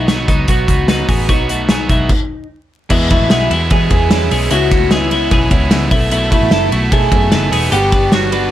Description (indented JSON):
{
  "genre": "jangly indie pop",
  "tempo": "149 BPM",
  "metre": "4/4",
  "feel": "straight",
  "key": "E major",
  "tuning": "A4 = 441 Hz",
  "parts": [
    { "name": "electric guitar through a small old amp", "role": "melody", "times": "0.0-8.5 s", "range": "D#4 to G#4", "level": "-18 LUFS", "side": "equal", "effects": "wide subtle chorus, slapback echo" },
    { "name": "crunchy overdriven guitar", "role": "accompaniment", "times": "0.0-8.5 s", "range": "E2 to F#4", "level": "-22 LUFS", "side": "right 5 dB", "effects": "none" },
    { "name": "twelve-string electric guitar", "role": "arpeggios", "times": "0.0-8.5 s", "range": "F#3 to C#5", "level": "-20 LUFS", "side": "left 2 dB", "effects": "none" },
    { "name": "vintage muted picked electric bass", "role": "bass", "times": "0.0-8.5 s", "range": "E1 to E3", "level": "-18 LUFS", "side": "equal", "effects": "none" },
    { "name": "loose indie drum kit", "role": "drums", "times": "0.1-8.4 s", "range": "crash cymbal, hi-hat, kick drum, ride cymbal, snare drum", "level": "-15 LUFS", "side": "equal", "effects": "gated reverb" },
    { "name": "warm upright piano", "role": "accompaniment", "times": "2.9-8.5 s", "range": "G3 to F#5", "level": "-23 LUFS", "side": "left 3 dB", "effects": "none" }
  ],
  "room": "light reverb",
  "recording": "vinyl crackle",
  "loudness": "-11 LUFS",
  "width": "side -12 dB against mid",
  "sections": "0.0-2.9 A section; 2.9-8.5 B section",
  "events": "stop 2.1-2.9",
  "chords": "0.0 E (rootless); 2.9 E; 4.5 C#m7; 5.9 B7sus4; 7.7 Gmaj7"
}